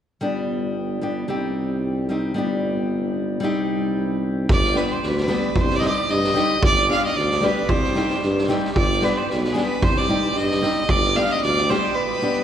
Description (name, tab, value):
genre	balkan folk, Balkan wedding band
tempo	113 BPM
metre	2/4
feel	swing 55% on 16ths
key	unclear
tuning	A4 = 441 Hz
part	nylon-string guitar	accompaniment	0.2-12.4 s	G3 to G4	-24 LUFS	left 1 dB	none
part	warm tuba	bass	0.2-11.7 s	G1 to G2	-25 LUFS	equal	none
part	clear fiddle	melody	4.5-12.4 s	Ab4 to F5	-22 LUFS	right 1 dB	none
part	street-band drum kit	percussion	4.5-11.8 s	kick drum, snare drum	-24 LUFS	right 1 dB	none
room	wet cathedral reverb, RT60 6.0 s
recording	recorded in a church or concert hall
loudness	-19 LUFS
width	side -9 dB against mid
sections	0.2-4.5 A section; 4.5-12.4 B section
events	break 11.9-12.4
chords	0.2 G; 1.3 Cm; 2.4 G; 3.4 Cm; 4.5 G; 5.6 Cm; 6.6 G; 7.7 Cm; 8.8 G; 9.8 Cm; 10.9 G